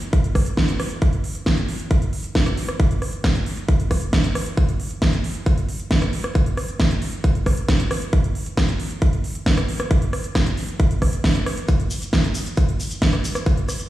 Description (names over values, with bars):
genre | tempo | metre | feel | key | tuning
trance | 135 BPM | 4/4 | straight | none | none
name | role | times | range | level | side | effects
big-room dance drum kit | drums | 0.0-13.9 s | hi-hat, rim click, snare drum | -24 LUFS | right 1 dB | studio reverb, sidechain pumping on hats, sidechain pumping on cymbals
electronic kick drum | drums | 0.1-13.6 s | none | -20 LUFS | equal | studio reverb
cabasa | percussion | 11.7-13.9 s | none | -33 LUFS | left 2 dB | none
room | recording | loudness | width
light reverb | played on a big sound system in a bare room, large studio reverb, studio reverb | -18 LUFS | side -14 dB against mid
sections
0.0-13.9 A section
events
none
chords
none